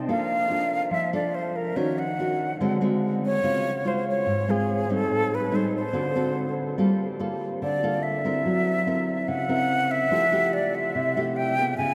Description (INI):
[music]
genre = bossa nova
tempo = 144 BPM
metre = 4/4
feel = straight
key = unclear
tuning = A4 = 437 Hz
[part]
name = nylon-string guitar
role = accompaniment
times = 0.0-11.9 s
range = Ab2 to Bb4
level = -28 LUFS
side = equal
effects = none
[part]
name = breathy concert flute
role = melody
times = 0.1-11.9 s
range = Ab4 to Ab5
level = -28 LUFS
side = equal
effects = none
[sound]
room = wet huge ambient reverb, RT60 8.5 s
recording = in a vast, echoing space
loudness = -25 LUFS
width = mono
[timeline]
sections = 0.0-11.9 A section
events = none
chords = 0.1 Bbmaj7; 1.8 Ebm7; 2.6 D7#11; 3.4 Dbmaj7; 5.1 Am7b5; 5.9 D7; 6.8 Gm9; 8.5 Gb7#11; 10.1 Fmaj9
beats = | 0.08 0.50 0.92 1.34 | 1.76 2.18 2.60 3.02 | 3.43 3.85 4.27 4.69 | 5.11 5.53 5.94 6.36 | 6.78 7.20 7.62 8.03 | 8.45 8.87 9.29 9.71 | 10.12 10.54 10.96 11.38 | 11.79